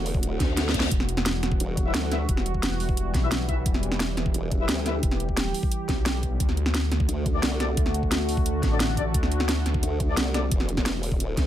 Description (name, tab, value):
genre	dark technical drum and bass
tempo	175 BPM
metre	4/4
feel	straight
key	E minor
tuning	A4 = 441 Hz
part	sweeping resonant pad	sustained chords	0.0-11.5 s	D3 to G4	-32 LUFS	right 1 dB	chorus, sidechain pumping
part	formant-sweep wobble bass	bass	0.0-2.3, 4.3-5.0, 7.1-7.8, 9.8-11.5 s	E1 to D2	-28 LUFS	equal	chorus
part	drum and bass drum kit	drums	0.1-11.4 s	hi-hat, snare drum	-28 LUFS	equal	overdrive
part	electronic kick drum	drums	0.1-11.4 s	none	-26 LUFS	equal	overdrive
part	reverse cymbal	sound effects	0.4-0.9 s	none	-34 LUFS	left 6 dB	none
part	wide detuned saw bass	bass	0.9-9.8 s	E1 to D2	-27 LUFS	equal	chorus, tube saturation, sidechain pumping
part	warm brass ensemble	stabs	1.9-4.9, 7.3-10.4 s	D4 to E5	-33 LUFS	left 6 dB	ping-pong delay
room	little or no reverb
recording	none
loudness	-22 LUFS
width	side -11 dB against mid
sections	0.0-11.5 A section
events	reverse cymbal 0.4-0.9; drum fill 0.6-0.9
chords	0.0 D; 0.9 Emadd9; 6.4 D